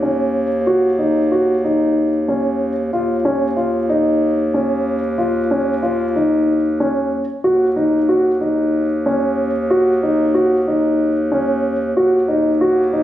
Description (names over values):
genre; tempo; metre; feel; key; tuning
contemporary instrumental, contemporary; 186 BPM (eighths); 7/8; straight; Eb minor; A4 = 440 Hz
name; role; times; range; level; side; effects
dark baby grand piano; arpeggios; 0.0-13.0 s; Db4 to Gb4; -16 LUFS; equal; none
warm bass clarinet; bass; 0.0-13.0 s; Eb2; -20 LUFS; right 1 dB; none
room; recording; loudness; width
wet recital hall reverb, RT60 1.3 s; recorded on a phone in the room, club reverb, compression; -15 LUFS; side -12 dB against mid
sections
0.0-13.0 A section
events
none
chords
0.0 Ebm7; 2.9 Dbadd9/Eb; 7.5 Ebm7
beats
0.03 0.35 | 0.67 0.99 1.32 1.64 1.96 2.29 2.61 | 2.93 3.25 3.58 3.90 4.22 4.54 4.87 | 5.19 5.51 5.84 6.16 6.48 6.80 7.13 | 7.45 7.77 8.10 8.42 8.74 9.06 9.39 | 9.71 10.03 10.35 10.68 11.00 11.32 11.64 | 11.97 12.29 12.61 12.94